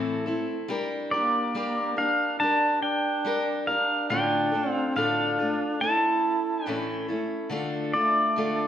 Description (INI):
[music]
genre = folk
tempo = 70 BPM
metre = 4/4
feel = straight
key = D minor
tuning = A4 = 444 Hz
[part]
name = picked steel-string acoustic guitar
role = accompaniment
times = 0.0-8.7 s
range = A2 to Bb4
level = -29 LUFS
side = left 2 dB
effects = none
[part]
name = pedal steel guitar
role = melody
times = 1.1-8.7 s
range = D5 to A5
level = -25 LUFS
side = equal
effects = none
[part]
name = mellow duduk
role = second line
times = 1.1-8.7 s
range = A3 to E4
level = -29 LUFS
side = right 2 dB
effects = none
[sound]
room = wet large studio reverb, RT60 1.4 s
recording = none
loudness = -23 LUFS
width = side -10 dB against mid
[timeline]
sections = 0.0-8.7 A section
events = none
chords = 0.0 Am; 0.7 Gm; 4.1 Dm/A; 5.8 A; 7.5 Dm